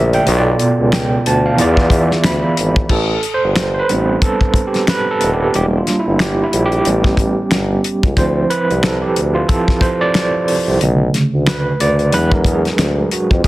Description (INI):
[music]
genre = R&B, neo-soul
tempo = 91 BPM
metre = 4/4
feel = swing 58% on 16ths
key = A minor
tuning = A4 = 438 Hz
[part]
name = overdriven tine electric piano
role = accompaniment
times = 0.0-13.5 s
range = B2 to B5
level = -16 LUFS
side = right 2 dB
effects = medium tremolo
[part]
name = clear tuba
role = bass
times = 0.0-13.5 s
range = D#1 to F2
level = -17 LUFS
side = equal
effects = none
[part]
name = damped 70s drum kit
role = drums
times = 0.1-13.5 s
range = crash cymbal, finger snaps, hi-hat, kick drum, snare drum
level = -17 LUFS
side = left 1 dB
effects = none
[sound]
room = light reverb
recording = dense, heavily limited modern master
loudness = -12 LUFS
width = side -17 dB against mid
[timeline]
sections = 0.0-2.9 A section; 2.9-13.5 B section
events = tine electric piano fill 1.6-2.9; tine electric piano solo 2.9-13.5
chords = 0.3 Bm7b5; 1.6 E7b9; 2.9 Am11; 5.5 Em7b5; 6.8 A7; 8.2 Dm9; 10.8 Bm7; 12.1 E9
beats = | 0.26 0.92 1.58 2.23 | 2.89 3.55 4.21 4.87 | 5.53 6.19 6.85 7.51 | 8.17 8.83 9.49 10.15 | 10.81 11.47 12.12 12.78 | 13.44